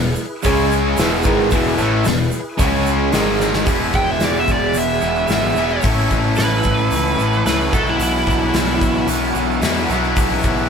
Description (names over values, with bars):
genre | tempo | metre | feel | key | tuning
classic rock | 111 BPM | 4/4 | straight | E major | A4 = 437 Hz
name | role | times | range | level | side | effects
reed electric piano | accompaniment | 0.0-3.6 s | C#4 to D#5 | -26 LUFS | left 1 dB | none
tonewheel organ | sustained chords | 0.0-10.7 s | B3 to D#5 | -33 LUFS | equal | none
distorted electric guitar | riff | 0.0-10.7 s | E2 to E4 | -22 LUFS | left 7 dB | overdrive
raw garage guitar | riff | 0.0-10.7 s | E2 to F#4 | -21 LUFS | right 5 dB | overdrive
sludgy distorted guitar | riff | 0.0-3.7 s | E2 to C#4 | -23 LUFS | left 1 dB | overdrive
growling picked electric bass | bass | 0.0-10.7 s | E1 to E2 | -23 LUFS | equal | overdrive
tube shaker | percussion | 0.2-10.6 s | none | -35 LUFS | right 5 dB | none
gated 80s drum kit | drums | 0.4-10.6 s | hi-hat, kick drum, snare drum | -22 LUFS | left 1 dB | none
bluesy overdriven lead guitar | melody | 4.0-9.1 s | E4 to G5 | -21 LUFS | right 3 dB | distortion
room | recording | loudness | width
moderate studio ambience, RT60 0.5 s | band playing live in one room | -15 LUFS | side -6 dB against mid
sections
0.0-3.7 A section; 3.7-10.7 B section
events
drum fill 3.4; lead electric guitar solo 3.7-10.7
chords
0.4 C#5; 1.0 E; 2.6 C#5; 3.1 G#5; 3.7 E; 5.8 A; 7.7 Bsus4